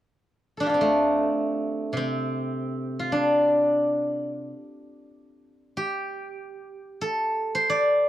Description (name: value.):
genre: chinese traditional, Chinese solo plucked strings.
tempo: free time.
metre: none.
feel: none.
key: D yu mode.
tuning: A4 = 440 Hz.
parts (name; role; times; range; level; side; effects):
steel-string zither; solo; 0.6-8.1 s; C3 to D5; -23 LUFS; equal; none.
room: light reverb.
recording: dry, close 1970s-style studio recording.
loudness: -22 LUFS.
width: side -13 dB against mid.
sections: 0.1-7.0 A section; 7.0-8.1 B section.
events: none.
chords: none.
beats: free time.